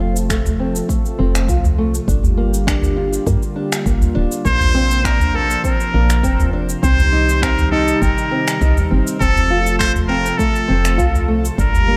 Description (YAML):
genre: organic downtempo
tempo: 101 BPM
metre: 4/4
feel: straight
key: unclear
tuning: A4 = 441 Hz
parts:
  - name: warm analog pad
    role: sustained chords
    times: 0.0-12.0 s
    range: C3 to A4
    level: -26 LUFS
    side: equal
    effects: chorus, sidechain pumping
  - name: nylon-string guitar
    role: arpeggios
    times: 0.0-12.0 s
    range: A3 to G4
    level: -25 LUFS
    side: equal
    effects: low-pass filter, delay
  - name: woody FM bass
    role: bass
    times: 0.0-12.0 s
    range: D1 to G2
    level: -20 LUFS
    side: equal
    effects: none
  - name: electronic cabasa and finger snaps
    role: drums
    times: 0.2-11.9 s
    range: none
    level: -29 LUFS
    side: equal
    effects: none
  - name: electronic kick drum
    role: drums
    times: 0.3-11.7 s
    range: none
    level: -23 LUFS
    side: equal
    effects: none
  - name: udu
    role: percussion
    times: 0.5-11.9 s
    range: none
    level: -23 LUFS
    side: equal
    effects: none
  - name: trumpet with straight mute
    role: melody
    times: 4.5-12.0 s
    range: A4 to C5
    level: -22 LUFS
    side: equal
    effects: diffuse ambient delay
room: moderate plate reverb, RT60 2.1 s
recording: dreamy mix soaked in reverb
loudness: -16 LUFS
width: mono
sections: 0.0-12.0 A section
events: none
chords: 0.0 F; 2.1 Gm7; 4.5 Bbadd9; 6.8 Cm; 9.2 F